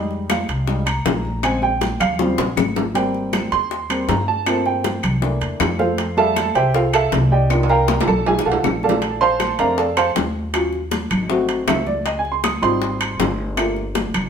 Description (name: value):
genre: Afro-Cuban jazz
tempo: 158 BPM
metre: 4/4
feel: straight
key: unclear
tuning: A4 = 438 Hz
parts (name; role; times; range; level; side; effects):
- warm upright piano; accompaniment; 0.0-13.8 s; Db3 to Eb6; -19 LUFS; right 2 dB; none
- upright bass; bass; 0.0-14.3 s; Gb1 to G2; -24 LUFS; equal; none
- bongos; percussion; 0.1-14.1 s; none; -25 LUFS; left 8 dB; none
- congas; percussion; 0.1-14.3 s; none; -27 LUFS; equal; none
- claves; percussion; 0.3-14.3 s; none; -29 LUFS; left 5 dB; none
- timbales; percussion; 0.3-14.3 s; none; -26 LUFS; right 5 dB; none
room: wet stone room reverb, RT60 0.9 s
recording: band playing live in one room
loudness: -17 LUFS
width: side -7 dB against mid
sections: 0.0-3.0 A section; 3.0-14.3 A section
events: upright piano solo 0.0-14.3; drum fill 2.2-3.0, 7.5-9.0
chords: 0.0 Fm9; 1.4 Bbm7; 2.2 Eb13; 3.0 Abmaj9; 4.5 Gm11; 5.2 C13; 6.0 Fmaj9; 7.5 Cm11; 8.3 B7#11; 9.0 Bbmaj9; 10.5 Ebm9; 11.3 Ab7b9; 12.1 Dbmaj9#11; 13.6 Gm9